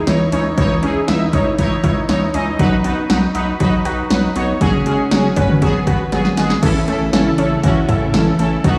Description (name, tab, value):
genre	synth-pop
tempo	119 BPM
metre	4/4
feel	straight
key	unclear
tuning	A4 = 441 Hz
part	analog synth brass	accompaniment	0.1-8.8 s	B3 to E5	-21 LUFS	equal	chorus
part	unison pluck	arpeggios	0.1-8.8 s	E3 to F#4	-23 LUFS	equal	digital delay
part	round analog bass	bass	0.1-8.8 s	F#1 to A2	-24 LUFS	equal	none
part	punchy analog drum machine	drums	0.1-8.8 s	crash cymbal, hi-hat, kick drum, snare drum, toms	-21 LUFS	equal	overdrive
part	string machine, violins	sustained chords	6.6-8.8 s	C#3 to F#4	-24 LUFS	equal	ensemble chorus
room	moderate lush hall reverb, RT60 2.3 s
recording	played on a big sound system in a bare room, large studio reverb, studio reverb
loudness	-16 LUFS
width	mono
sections	0.0-6.6 A section; 6.6-8.8 B section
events	drum fill 6.1-6.6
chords	0.0 C#madd9; 2.6 B; 4.6 F#sus2; 5.6 G#m7; 6.6 A